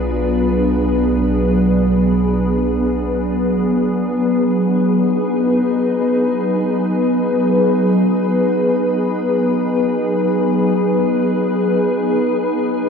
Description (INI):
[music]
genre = ambient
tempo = free time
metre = none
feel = none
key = unclear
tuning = A4 = 440 Hz
[part]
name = glassy FM pad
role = sustained chords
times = 0.0-12.9 s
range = F#3 to B4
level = -14 LUFS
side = equal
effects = ensemble chorus, built-in reverb, cassette tape
[part]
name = round analog bass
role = bass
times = 0.0-4.3 s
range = B1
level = -24 LUFS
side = equal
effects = none
[sound]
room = wet lush hall reverb, RT60 2.8 s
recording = home recording on cassette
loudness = -14 LUFS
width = side -6 dB against mid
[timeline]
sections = 0.0-4.3 A section; 4.3-12.9 B section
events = none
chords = 0.0 Bm6; 4.3 G#m7/F#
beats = free time